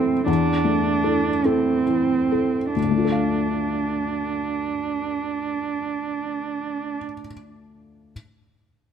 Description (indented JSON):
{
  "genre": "neoclassical piano and strings",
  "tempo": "44-55 BPM (dotted quarters)",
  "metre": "6/8",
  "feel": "rubato",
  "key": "D minor",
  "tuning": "A4 = 439 Hz",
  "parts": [
    { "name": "muted cello", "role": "second line", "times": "0.0-7.0 s", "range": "C4 to D4", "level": "-23 LUFS", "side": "right 5 dB", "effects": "none" },
    { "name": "felt-muted upright piano", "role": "accompaniment", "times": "0.0-8.1 s", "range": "D2 to F5", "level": "-24 LUFS", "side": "left 4 dB", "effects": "none" }
  ],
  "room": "light reverb",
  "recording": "close, detailed microphones",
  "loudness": "-20 LUFS",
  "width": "side -8 dB against mid",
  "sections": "0.0-2.8 A section; 2.8-8.1 B section",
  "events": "slowing down 0.0-2.8",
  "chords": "0.0 Am/E; 2.8 Dm",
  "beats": "| 0.27 1.44 | 2.76 4.11 | 5.43 6.77"
}